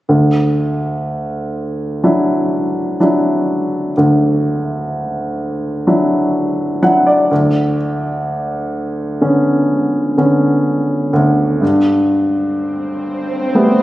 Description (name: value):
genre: pop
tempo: 63 BPM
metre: 4/4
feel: straight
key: D major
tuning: A4 = 440 Hz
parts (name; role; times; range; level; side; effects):
- warm baby grand piano; accompaniment; 0.1-13.8 s; D2 to F#5; -13 LUFS; equal; none
- swell; sound effects; 12.5-13.8 s; none; -22 LUFS; right 2 dB; none
room: moderate lush hall reverb, RT60 2.7 s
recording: recorded on a phone in the room, studio reverb, compression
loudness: -13 LUFS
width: side -15 dB against mid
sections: 0.1-13.8 A section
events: grand piano fill 6.4-7.8; swell 12.5-13.8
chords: 0.1 Dadd9; 7.3 Bmadd9/D; 11.6 Gadd9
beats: | 0.09 1.06 2.03 3.00 | 3.96 4.92 5.87 6.83 | 7.79 8.74 9.70 10.66 | 11.62 12.58 13.55